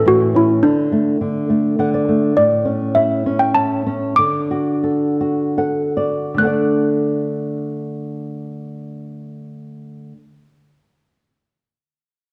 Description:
children's music, lullaby; 67-105 BPM; 3/4; straight; D major; A4 = 441 Hz
malleted handbells; melody; 0.0-10.2 s; D4 to F#6; -18 LUFS; equal
flamenco guitar; accompaniment; 0.0-10.2 s; A2 to F#5; -21 LUFS; equal
moderate scoring stage reverb, RT60 1.8 s; dark, warm production; -18 LUFS; mono
0.0-2.4 A section; 2.4-6.4 B section; 6.4-11.7 C section
nylon-string guitar fill 1.5-2.4, 5.2-6.4; slowing down 2.4-6.4
0.0 A; 0.6 D5; 2.4 A; 4.2 D
0.05 | 0.63 1.20 1.78 | 2.37 2.95 3.55 | 4.18 4.84 5.58 | 6.41 7.29 8.16 | 9.03 9.91

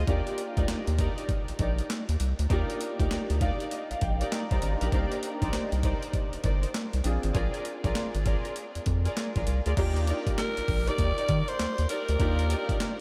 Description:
R&B, new jack swing; 99 BPM; 4/4; swing 64% on 16ths; Eb major; A4 = 439 Hz
clear concert grand piano; accompaniment; 0.0-13.0 s; Bb3 to Bb5; -38 LUFS; equal; ensemble chorus
dark studio string section; stabs; 0.0-12.7 s; Eb4 to D5; -37 LUFS; equal; delay
round analog bass; bass; 0.0-12.6 s; G1 to Eb3; -30 LUFS; equal
breakbeat sampler-style drum kit; drums; 0.1-13.0 s; crash cymbal, handclaps, hi-hat, kick drum, snare drum; -33 LUFS; equal; overdrive
raspy alto saxophone; melody; 10.4-13.0 s; Bb4 to D5; -34 LUFS; equal; delay
moderate huge ambient reverb, RT60 8.5 s; dreamy mix soaked in reverb; -28 LUFS; mono
0.0-9.8 A section; 9.8-13.0 B section
grand piano fill 3.1-4.9
0.1 Ebmaj7; 4.9 Cm9; 7.0 Bb7; 9.8 Ebmaj7
| 0.07 0.68 1.29 1.89 | 2.50 3.10 3.71 4.32 | 4.92 5.53 6.13 6.74 | 7.35 7.95 8.56 9.17 | 9.77 10.38 10.98 11.59 | 12.20 12.80

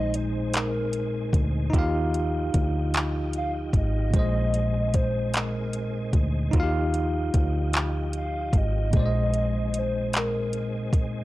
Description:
slow six-eight R&B; 50 BPM (dotted quarters); 6/8; straight; Eb major; A4 = 441 Hz
hollow clarinet-like synth lead; melody; 0.0-11.1 s; Bb4 to F5; -32 LUFS; left 1 dB; chorus, phaser, analog delay
bell-like tine electric piano; accompaniment; 0.0-11.2 s; Bb2 to F5; -28 LUFS; equal; medium stereo tremolo
tonewheel organ; sustained chords; 0.0-11.2 s; F3 to Ab4; -40 LUFS; equal; chorus vibrato, fast rotary speaker
fingered electric bass; bass; 0.0-11.2 s; Ab1 to Eb2; -28 LUFS; equal; tube saturation
smooth R&B drum kit; drums; 0.1-11.1 s; handclaps, hi-hat, kick drum; -24 LUFS; equal
digital ambience; dry, gritty hardware recording; -23 LUFS; side -17 dB against mid
0.0-11.2 A section
0.0 Bb9sus4; 1.7 Ebmaj9; 4.1 Bb9sus4; 6.5 Ebmaj9; 8.9 Bb9sus4
0.54 | 1.74 2.94 | 4.14 5.34 | 6.54 7.74 | 8.94 10.14

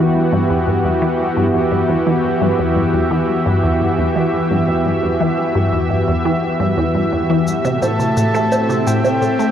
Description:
ambient, sequencer-driven space music; 86 BPM; 4/4; straight; E minor; A4 = 440 Hz
lush unison pad; sustained chords; 0.0-9.5 s; A2 to E5; -16 LUFS; equal; chorus
resonant blip pluck; riff; 0.0-9.5 s; E2 to A3; -18 LUFS; equal; phaser, analog delay
cabasa and bongos; percussion; 7.5-9.5 s; -22 LUFS; right 1 dB
breathy flute-like synth lead; melody; 7.8-9.5 s; G5 to A5; -21 LUFS; equal; chorus, cassette tape
wet huge ambient reverb, RT60 7.9 s; worn, warbling old tape, cassette tape, warbly pitch drift; -14 LUFS; side -9 dB against mid
0.0-9.5 A section
0.0 Emadd9; 7.5 Am
0.50 1.20 | 1.89 2.59 3.29 3.99 | 4.68 5.38 6.08 6.78 | 7.47 8.17 8.87

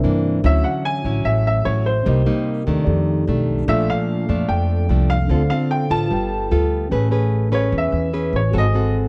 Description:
bossa nova; 148 BPM; 4/4; straight; A4 = 438 Hz
mellow tine electric piano; accompaniment; 0.0-9.1 s; Bb3 to G#5; -30 LUFS; equal
nylon-string guitar; accompaniment; 0.0-9.1 s; F2 to B4; -24 LUFS; equal
upright bass; bass; 0.0-9.1 s; G1 to G2; -22 LUFS; equal
clear baby grand piano; melody; 0.5-8.9 s; C5 to A5; -26 LUFS; equal; plate reverb
light reverb; dark, warm production; -19 LUFS; mono
0.0-6.9 A section; 6.9-9.1 B section
grand piano solo 6.9-9.1
0.4 Dmaj9; 2.1 Cm7; 2.9 F13; 3.7 Bbmaj7; 5.3 Dm7; 6.1 G9; 6.9 Amaj9; 8.5 G#7b9
0.04 | 0.44 0.84 1.25 1.65 | 2.06 2.46 2.87 3.27 | 3.68 4.08 4.49 4.89 | 5.30 5.70 6.11 6.51 | 6.92 7.32 7.72 8.13 | 8.54 8.94

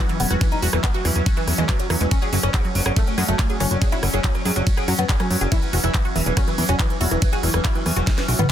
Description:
psychedelic trance; 141 BPM; 4/4; straight; A4 = 440 Hz
oud; melody; 0.0-8.5 s; E3 to G#4; -26 LUFS; equal; phaser, sidechain pumping, dub echo
overtone-sweeping drone; sustained chords; 0.0-8.5 s; F#3 to C#4; -28 LUFS; left 1 dB; chorus, built-in reverb, sidechain pumping
wide unison pluck; riff; 0.0-8.4 s; E3 to G#4; -28 LUFS; moving between left 1 dB and right 6 dB; auto-pan, sidechain pumping, dub echo
drum and bass drum kit; drums; 0.1-8.5 s; handclaps, hi-hat, ride cymbal, rim click, snare drum, toms; -26 LUFS; right 1 dB; soft clipping on snare
fat analog bass; bass; 0.2-8.4 s; E1 to F#2; -21 LUFS; equal
electronic kick drum; drums; 0.4-8.5 s; -20 LUFS; equal
vowel-sweep wobble bass; second line; 2.4-4.5 s; B3 to C#4; -37 LUFS; left 6 dB
little or no reverb; dense, heavily limited modern master; -18 LUFS; side -10 dB against mid
0.0-8.5 A section
drum fill 8.1-8.5
0.0 Esus2; 2.1 F#5; 5.5 E5
| 0.41 0.84 1.26 1.69 | 2.11 2.54 2.96 3.39 | 3.82 4.24 4.67 5.09 | 5.52 5.94 6.37 6.79 | 7.22 7.65 8.07 8.50

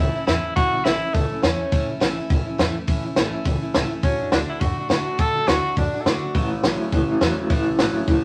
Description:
rockabilly; 208 BPM; 4/4; swing 60% on 8ths; A major; A4 = 440 Hz
warm tenor saxophone; melody; 0.0-1.9, 4.0-6.5 s; A3 to A4; -26 LUFS; equal
picked steel-string acoustic guitar; accompaniment; 0.0-8.2 s; A2 to F#4; -30 LUFS; equal
upright bass; bass; 0.0-8.2 s; A1 to A2; -31 LUFS; equal
compact cocktail drum kit; drums; 0.3-8.2 s; hi-hat, kick drum, snare drum; -24 LUFS; equal
electric guitar through a small old amp; riff; 6.3-8.2 s; A2 to F#3; -24 LUFS; equal; tremolo
moderate studio reverb, RT60 0.6 s; vinyl crackle; -21 LUFS; mono
0.0-8.2 A section
0.0 A; 4.0 D; 6.3 A
0.28 | 0.57 0.85 1.14 1.43 | 1.72 2.01 2.30 2.59 | 2.88 3.17 3.45 3.74 | 4.03 4.32 4.61 4.90 | 5.19 5.48 5.77 6.06 | 6.35 6.63 6.92 7.21 | 7.50 7.79 8.08

